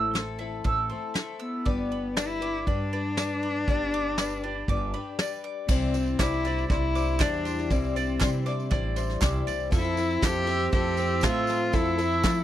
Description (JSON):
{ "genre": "indie folk with a building arrangement", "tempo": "119 BPM", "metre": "4/4", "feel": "straight", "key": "C major", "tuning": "A4 = 440 Hz", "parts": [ { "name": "dark cello", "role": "melody", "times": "0.0-12.4 s", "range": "A3 to G4", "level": "-29 LUFS", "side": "left 2 dB", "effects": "none" }, { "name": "picked twelve-string acoustic guitar", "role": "accompaniment", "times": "0.0-12.4 s", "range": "A2 to C5", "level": "-33 LUFS", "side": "left 8 dB", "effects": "none" }, { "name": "bowl-back mandolin", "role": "arpeggios", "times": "0.0-12.4 s", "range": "D5 to E6", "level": "-34 LUFS", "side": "right 5 dB", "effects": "none" }, { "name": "upright bass", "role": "bass", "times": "0.0-12.4 s", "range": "G1 to F3", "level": "-31 LUFS", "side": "right 1 dB", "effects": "none" }, { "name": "soft brush drum kit", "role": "drums", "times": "0.1-12.4 s", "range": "crash cymbal, kick drum, snare drum", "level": "-27 LUFS", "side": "right 1 dB", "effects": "none" }, { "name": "tambourine", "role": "percussion", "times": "2.2-12.4 s", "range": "none", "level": "-45 LUFS", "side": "right 9 dB", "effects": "none" }, { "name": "mellow French horn", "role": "second line", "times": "5.7-12.4 s", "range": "G3 to C4", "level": "-34 LUFS", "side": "right 5 dB", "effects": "none" }, { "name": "group handclap", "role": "percussion", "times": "6.2-12.4 s", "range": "none", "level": "-36 LUFS", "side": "right 6 dB", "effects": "none" } ], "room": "studio ambience", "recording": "dry, close 1970s-style studio recording", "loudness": "-24 LUFS", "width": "side -12 dB against mid", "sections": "0.0-5.7 A section; 5.7-12.4 B section", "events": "none", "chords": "0.0 Am; 1.7 G; 5.7 Cadd9; 9.7 Fmaj7" }